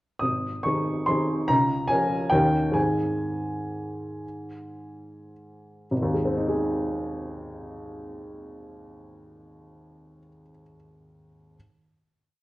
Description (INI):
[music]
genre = classical, piano waltz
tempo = 98-152 BPM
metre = 3/4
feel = rubato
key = Ab major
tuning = A4 = 441 Hz
[part]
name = warm upright piano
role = solo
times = 0.2-11.6 s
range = Ab1 to Eb6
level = -24 LUFS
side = equal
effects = none
[sound]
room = moderate recital hall reverb, RT60 1.4 s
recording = worn, warbling old tape, cassette tape, warbly pitch drift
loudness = -23 LUFS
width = side -18 dB against mid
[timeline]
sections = 0.2-5.9 A section; 5.9-9.4 final chord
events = slowing down 2.1-5.9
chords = 0.2 Ab; 1.5 Bbm/Db; 2.3 Eb7; 2.8 Ab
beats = | 0.23 0.66 1.08 | 1.49 1.89 2.32 | 2.76 3.22 3.72 | 4.22 4.75 5.33 | 5.91 6.48 7.08 | 7.66 8.23 8.84